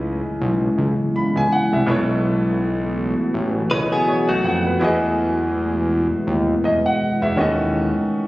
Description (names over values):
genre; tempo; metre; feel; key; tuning
contemporary R&B; 82 BPM; 4/4; swing 58% on 16ths; unclear; A4 = 445 Hz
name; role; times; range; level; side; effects
warm baby grand piano; accompaniment; 0.0-8.3 s; B2 to B5; -22 LUFS; equal; none
deep dark ambient pad; sustained chords; 0.0-8.3 s; B2 to D#5; -22 LUFS; equal; chorus, built-in reverb
fat analog bass; bass; 0.0-7.9 s; A1 to E#2; -22 LUFS; equal; none
direct-recorded clean electric guitar; arpeggios; 3.7-4.8 s; A3 to B4; -21 LUFS; left 1 dB; lush chorus, digital delay
room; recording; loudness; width
light reverb, digital ambience; recorded on a phone in the room, studio reverb, compression; -17 LUFS; side -18 dB against mid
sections
0.0-8.3 A section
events
none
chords
0.0 C#m7; 1.9 B7sus4; 4.8 Emaj7; 7.4 D#m7b5